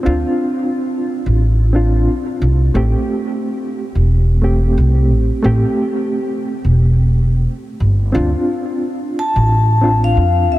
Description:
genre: trip hop.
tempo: 89 BPM.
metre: 4/4.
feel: swing 58% on 16ths.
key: A minor.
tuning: A4 = 439 Hz.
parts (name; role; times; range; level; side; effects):
reed electric piano; accompaniment; 0.0-10.6 s; A3 to G4; -19 LUFS; equal; fast tremolo, tape echo.
upright bass; bass; 0.1-10.6 s; E1 to F2; -13 LUFS; equal; none.
vibraphone with medium mallets; melody; 9.2-10.6 s; E5 to A5; -16 LUFS; left 4 dB; dub echo.
room: moderate huge ambient reverb, RT60 6.2 s.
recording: dreamy mix soaked in reverb.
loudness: -13 LUFS.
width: side -16 dB against mid.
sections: 0.0-10.6 A section.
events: none.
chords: 0.0 Dm7; 2.8 Am7; 8.1 Dm7.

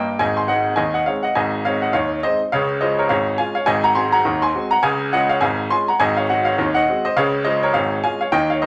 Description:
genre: ragtime piano.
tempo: 103 BPM.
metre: 2/4.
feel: swing 57% on 16ths.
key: Db major.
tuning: A4 = 440 Hz.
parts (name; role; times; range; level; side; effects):
clear grand piano; solo; 0.0-8.7 s; Ab1 to C6; -19 LUFS; equal; none.
room: moderate large studio reverb, RT60 0.9 s.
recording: vinyl crackle.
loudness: -19 LUFS.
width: mono.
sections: 0.0-8.7 A section.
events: none.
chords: 0.2 Ab; 2.5 Db; 3.7 Ab7; 4.8 Db; 6.0 Ab7; 7.2 Db.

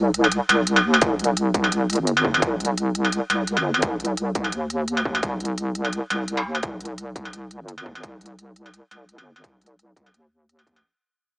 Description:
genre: half-time drum and bass.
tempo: 171 BPM.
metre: 4/4.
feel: swing 54% on 16ths, half-time.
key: C minor.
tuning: A4 = 437 Hz.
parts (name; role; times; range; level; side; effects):
deep soft wobble bass; bass; 0.0-10.8 s; G1 to Eb2; -23 LUFS; equal; chorus.
electronic hi-hat and struck metal; drums; 0.1-10.8 s; none; -22 LUFS; equal; none.
electronic kick drum; drums; 1.0-10.7 s; none; -25 LUFS; equal; distortion.
room: little or no reverb.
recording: small speaker sound.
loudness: -20 LUFS.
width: side -34 dB against mid.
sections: 0.0-10.8 A section.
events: fade-out 0.0-10.8.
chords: none.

